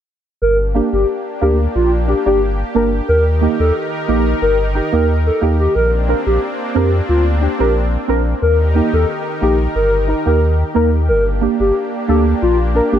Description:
dancehall; 90 BPM; 4/4; straight; G minor; A4 = 441 Hz
hollow clarinet-like synth lead; melody; 0.4-13.0 s; F4 to Bb4; -18 LUFS; left 1 dB; chorus, ping-pong delay
lush unison pad; sustained chords; 0.4-13.0 s; Eb3 to Bb4; -23 LUFS; equal; chorus
saturated sub bass; bass; 0.4-13.0 s; G1 to F2; -16 LUFS; equal
deep mellow chord stab; accompaniment; 0.7-13.0 s; Bb3 to Bb4; -18 LUFS; right 3 dB; chorus
light reverb, digital ambience; -13 LUFS; side -10 dB against mid
0.4-13.0 A section
0.4 Gm; 3.1 Eb; 5.8 Bbadd9; 8.4 Eb; 11.1 Gm

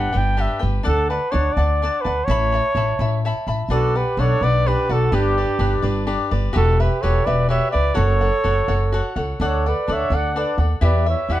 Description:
mexican folk, mariachi; 84 BPM (dotted quarters); 6/8; straight; D major; A4 = 442 Hz
warm trumpet; melody; 0.0-11.4 s; G4 to G5; -22 LUFS; equal
cavaquinho; accompaniment; 0.0-11.4 s; D4 to B5; -25 LUFS; left 2 dB
upright bass; bass; 0.0-11.4 s; E1 to E2; -20 LUFS; equal
warm trumpet; second line; 3.7-11.4 s; D4 to D5; -27 LUFS; right 6 dB
light reverb; dark, warm production; -17 LUFS; side -14 dB against mid
0.0-11.4 A section
0.0 G; 0.9 D; 2.3 Aadd9; 3.7 Bm; 5.1 G; 6.6 Emadd9; 8.0 F#m; 9.4 D; 10.8 Em

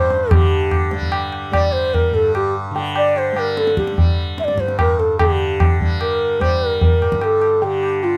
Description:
indian classical, Hindustani; 148 BPM; 3/4; straight; G raga bhimpalasi; A4 = 440 Hz
breathy mellow bansuri; melody; 0.0-8.2 s; F4 to E5; -20 LUFS; equal
tanpura; drone; 0.0-8.2 s; G2 to G3; -27 LUFS; equal
tabla; percussion; 0.1-8.2 s; -21 LUFS; equal
light reverb; close, detailed microphones; -17 LUFS; mono
0.0-5.2 A section; 5.2-8.2 A section

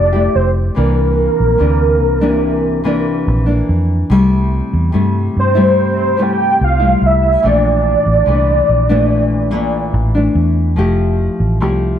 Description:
indie pop, bedroom pop; 72 BPM; 4/4; straight; A4 = 438 Hz
soft octave-layered synth lead; melody; 0.0-9.9 s; Bb4 to G5; -14 LUFS; right 2 dB; ensemble chorus, slapback echo
nylon-string guitar; accompaniment; 0.0-12.0 s; Bb2 to G4; -16 LUFS; left 3 dB; wide subtle chorus, warbly pitch drift
vintage muted fingered electric bass; bass; 0.0-11.9 s; F1 to G2; -15 LUFS; equal
light reverb, small room ambience; -11 LUFS; side -9 dB against mid
0.0-12.0 A section
0.0 Fmaj9; 0.8 C9; 4.1 C6; 7.4 Bbmaj7#11; 10.8 Fmaj9

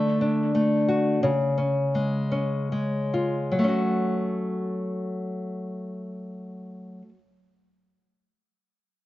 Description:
pop; 45-61 BPM (dotted quarters); 6/8; straight; F# minor; A4 = 441 Hz
nylon-string guitar; accompaniment; 0.0-7.2 s; C#3 to F#4; -24 LUFS; left 1 dB
moderate echo chamber reverb, RT60 2.1 s; echo-heavy mix, nothing above 7.8 kHz; -23 LUFS; side -16 dB against mid
0.0-3.6 A section; 3.6-8.9 B section
slowing down 0.0-3.6
0.0 D; 1.2 C#; 3.6 F#m

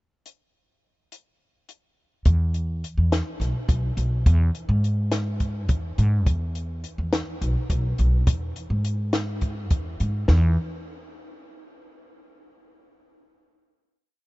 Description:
progressive instrumental, band music in an uneven meter; 209 BPM (eighths); 7/8; straight; E major; A4 = 440 Hz
compact cocktail drum kit; drums; 0.3-10.4 s; hi-hat, kick drum, snare drum; -26 LUFS; equal
upright bass; bass; 2.3-10.6 s; B1 to G#2; -22 LUFS; equal
little or no reverb; nothing above 7.7 kHz; -21 LUFS; side -20 dB against mid
0.3-2.3 pickup bar; 2.3-10.3 groove; 10.3-12.3 final note

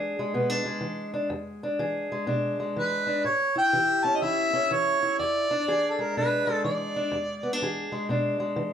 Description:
acoustic country blues, solo or duo; 124 BPM; 4/4; swing 64% on 8ths; E mixolydian; A4 = 440 Hz
fingerpicked steel-string acoustic guitar; accompaniment; 0.0-8.7 s; E2 to G#4; -27 LUFS; left 1 dB
mellow harmonica; melody; 2.8-7.6 s; A4 to A5; -24 LUFS; right 1 dB
moderate large studio reverb, RT60 0.9 s; band playing live in one room; -24 LUFS; side -8 dB against mid
0.0-8.7 A section
0.0 E7; 3.2 A7; 5.2 E7

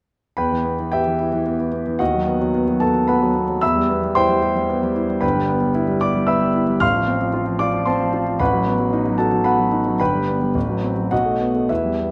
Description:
classical, virtuoso piano study; 112 BPM; 3/4; rubato; E minor; A4 = 438 Hz
clear grand piano; solo; 0.4-12.1 s; G1 to F6; -19 LUFS; equal
moderate large studio reverb, RT60 1.1 s; -19 LUFS; mono
0.4-12.1 A section
0.4 Em; 2.0 B/D#; 3.6 Em; 5.2 Em/G; 6.8 F/A; 8.4 B7/A; 10.0 G; 10.6 F#dim/A; 11.1 B7

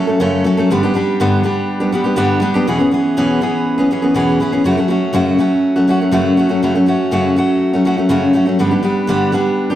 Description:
rock; 122 BPM; 4/4; straight; A4 = 441 Hz
picked steel-string acoustic guitar; solo; 0.0-9.8 s; E2 to A4; -12 LUFS; equal
moderate large studio reverb, RT60 1.4 s; -12 LUFS; side -12 dB against mid
0.0-9.8 A section
0.0 F#m; 0.7 G; 2.7 E6; 4.7 F#m; 8.6 G

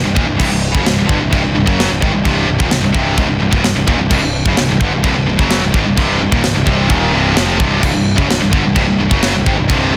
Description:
heavy metal; 129 BPM; 4/4; straight; A4 = 444 Hz
heavy high-gain guitar; riff; 0.0-10.0 s; C2 to F#3; -22 LUFS; equal; distortion
high-gain distorted guitar; riff; 0.0-10.0 s; C2 to F#3; -20 LUFS; equal; distortion
tight distorted guitar; riff; 0.0-10.0 s; C2 to F#3; -22 LUFS; equal; distortion
fuzz picked electric bass; bass; 0.0-10.0 s; C1 to Ab1; -21 LUFS; equal; overdrive
tight metal drum kit; drums; 0.2-9.8 s; china cymbal, crash cymbal, kick drum, snare drum; -19 LUFS; equal
small room ambience; dense, heavily limited modern master; -14 LUFS; mono
0.0-10.0 A section
0.0 Cm

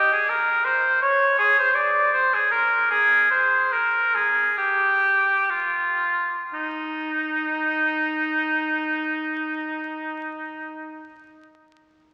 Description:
classical, baroque-style fantasia for unaccompanied oboe; 56-86 BPM; 4/4; rubato; Eb major; A4 = 440 Hz
clear oboe; solo; 0.0-11.1 s; Eb4 to D5; -22 LUFS; equal
wet church reverb, RT60 2.9 s; very old 78 rpm record, vinyl crackle; -21 LUFS; mono
0.0-6.5 A section; 6.5-10.6 B section
slowing down 0.0-6.5

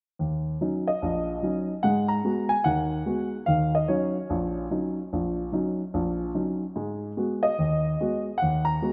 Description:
solo jazz; 146 BPM; 4/4; swing 64% on 8ths; Eb minor; A4 = 440 Hz
dark grand piano; solo; 0.2-8.9 s; Bb1 to Bb5; -27 LUFS; equal
moderate lush hall reverb, RT60 2.5 s; rough home demo mix; -27 LUFS; mono
0.2-8.9 A section
0.2 Ebm7; 1.8 Abm7; 3.5 Ebm7; 6.8 Abm7

